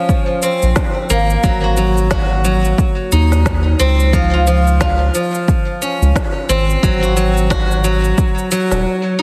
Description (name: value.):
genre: organic downtempo.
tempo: 89 BPM.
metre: 4/4.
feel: swing 59% on 16ths.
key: Ab mixolydian.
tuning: A4 = 442 Hz.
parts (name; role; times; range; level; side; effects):
steel-string zither; arpeggios; 0.0-9.2 s; F3 to Gb4; -19 LUFS; equal; digital delay.
electronic kick drum; drums; 0.1-8.3 s; none; -19 LUFS; equal; overdrive.
electronic shaker and snare drum; drums; 0.1-8.8 s; none; -27 LUFS; equal; none.
round analog bass; bass; 0.6-8.9 s; Eb1 to Eb2; -17 LUFS; equal; sidechain pumping.
room: moderate lush hall reverb, RT60 1.9 s, digital ambience.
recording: heavily compressed radio sound, multiband compression.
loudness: -15 LUFS.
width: mono.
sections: 0.0-9.2 A section.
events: none.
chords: 0.0 Bbm9; 1.4 Ab7; 4.1 Dbmaj7; 6.8 Ab5.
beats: 0.09 0.76 | 1.44 2.11 2.79 3.46 | 4.13 4.81 5.48 6.16 | 6.83 7.50 8.18 8.85.